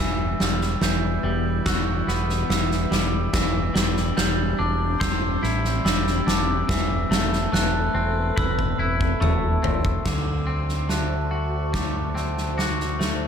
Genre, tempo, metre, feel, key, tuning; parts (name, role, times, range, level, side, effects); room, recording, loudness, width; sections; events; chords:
post-rock; 72 BPM; 4/4; straight; A4 = 441 Hz
evolving wavetable pad; sustained chords; 0.0-13.3 s; E3 to A5; -32 LUFS; equal; ensemble chorus, built-in reverb, phaser
glockenspiel with soft plastic mallets; arpeggios; 0.0-13.3 s; D6 to G6; -31 LUFS; right 3 dB; digital delay
twangy electric guitar; arpeggios; 0.0-13.3 s; D3 to C5; -28 LUFS; left 3 dB; digital delay
growling fingered electric bass; bass; 0.0-13.3 s; E1 to D2; -26 LUFS; equal; overdrive
big rock drum kit; drums; 0.4-13.2 s; crash cymbal, kick drum, snare drum, toms; -25 LUFS; equal
light reverb, small room reverb; -20 LUFS; side -7 dB against mid
0.0-10.1 A section; 10.1-13.3 B section
drum fill 8.4-10.1
0.0 Emadd9; 3.3 Cadd9/E; 6.7 Amadd9/E; 10.1 D7